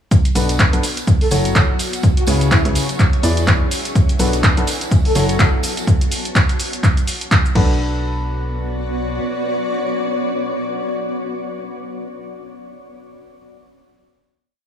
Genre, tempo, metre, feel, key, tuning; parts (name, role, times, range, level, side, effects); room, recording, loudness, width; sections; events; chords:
piano house; 125 BPM; 4/4; swing 58% on 16ths; B dorian; A4 = 440 Hz
electronic kick drum; drums; 0.1-7.7 s; -15 LUFS; equal
punchy analog drum machine; drums; 0.1-7.7 s; cabasa, crash cymbal, handclaps, hi-hat; -21 LUFS; equal
tambourine; percussion; 0.1-5.9 s; -32 LUFS; right 10 dB
granular cloud pad; texture; 0.9-11.3 s; B3 to D5; -25 LUFS; left 1 dB; built-in reverb, sidechain pumping
clear upright piano; riff; 0.4-10.8 s; B2 to D5; -24 LUFS; left 2 dB; vintage 12-bit sampler grit, sidechain pumping, digital delay
organ-like FM bass; bass; 0.4-9.2 s; F#1 to E2; -20 LUFS; equal; sidechain pumping
breathy flute-like synth lead; melody; 1.2-5.2 s; E4 to A4; -26 LUFS; equal; ensemble chorus, digital delay
light reverb; studio ambience; -15 LUFS; side -9 dB against mid
0.1-7.8 drop; 7.8-11.6 final chord
drop 0.1-7.8
0.1 Bm7; 0.8 F#m7; 2.0 C#m7; 3.0 E7; 4.0 Bm7; 4.7 F#m7; 5.9 N.C.; 7.6 Bm7